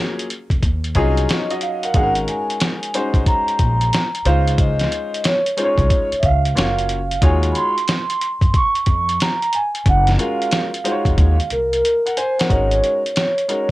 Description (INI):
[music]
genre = hip hop, jazz-hop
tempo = 91 BPM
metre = 4/4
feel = swing 66% on 16ths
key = unclear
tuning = A4 = 440 Hz
[part]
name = bright upright piano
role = accompaniment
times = 0.0-13.7 s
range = Gb3 to Ab5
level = -23 LUFS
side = left 2 dB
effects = cassette tape, plate reverb
[part]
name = dusty soul sampler-style drum kit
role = drums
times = 0.2-13.7 s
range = hi-hat, kick drum, snare drum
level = -20 LUFS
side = equal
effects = cassette tape
[part]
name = upright bass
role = bass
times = 0.5-12.8 s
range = F1 to Gb2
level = -19 LUFS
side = equal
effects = none
[part]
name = vibraphone with soft mallets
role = melody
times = 1.0-13.7 s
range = Bb4 to Db6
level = -20 LUFS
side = right 1 dB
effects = cassette tape, plate reverb
[sound]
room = light reverb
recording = home recording on cassette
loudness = -16 LUFS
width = side -18 dB against mid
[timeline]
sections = 0.0-1.9 A section; 1.9-12.5 B section; 12.5-13.7 A section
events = drum fill 11.2-12.5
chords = 0.0 Gbmaj9; 0.6 Ebm11; 1.9 Ab9sus4; 4.3 Dbmaj9; 6.6 Gbmaj7; 7.2 Ebm11; 9.9 Gbmaj9; 11.2 Ebm11; 12.5 Ab9sus4